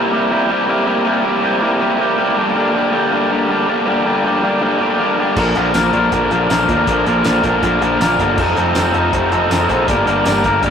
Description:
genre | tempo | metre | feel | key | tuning
indie rock | 160 BPM | 4/4 | straight | G minor | A4 = 440 Hz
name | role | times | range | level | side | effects
raw garage guitar | riff | 0.0-10.7 s | G2 to Bb4 | -13 LUFS | equal | overdrive
growling picked electric bass | bass | 5.4-10.7 s | F1 to Eb2 | -21 LUFS | equal | overdrive
cloth-damped thuddy drum kit | drums | 5.4-10.7 s | crash cymbal, hi-hat, kick drum, snare drum, tambourine | -23 LUFS | right 1 dB | none
room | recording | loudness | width
moderate stone room reverb, RT60 0.9 s | rough rehearsal-room recording, tube saturation | -13 LUFS | side -7 dB against mid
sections
0.0-10.7 A section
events
none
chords
0.0 C7; 2.4 Gm; 5.4 Bb; 8.4 F7; 9.9 Gm

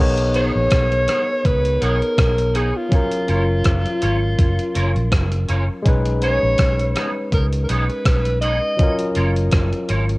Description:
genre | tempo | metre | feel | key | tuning
lovers rock reggae | 82 BPM | 4/4 | swing 54% on 16ths | unclear | A4 = 436 Hz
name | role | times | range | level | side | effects
barky tine electric piano | accompaniment | 0.0-10.2 s | F#3 to C#5 | -24 LUFS | left 1 dB | overdrive, cassette tape, analog delay
vintage muted fingered electric bass | bass | 0.0-10.2 s | F#1 to C#2 | -20 LUFS | equal | none
crisp 8-bit digital drum machine | drums | 0.2-10.2 s | hi-hat, kick drum, rim click | -20 LUFS | equal | cassette tape
twangy electric guitar | stabs | 0.3-10.0 s | B3 to C#5 | -28 LUFS | right 2 dB | ensemble chorus, cassette tape, analog delay
breathy alto saxophone | melody | 0.4-9.1 s | E#4 to D#5 | -22 LUFS | equal | tape echo
room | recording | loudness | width
light reverb, digital ambience | home recording on cassette | -16 LUFS | side -22 dB against mid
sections
0.0-10.2 A section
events
none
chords
0.0 B69; 2.9 F#maj7; 5.9 B69; 8.8 F#maj7

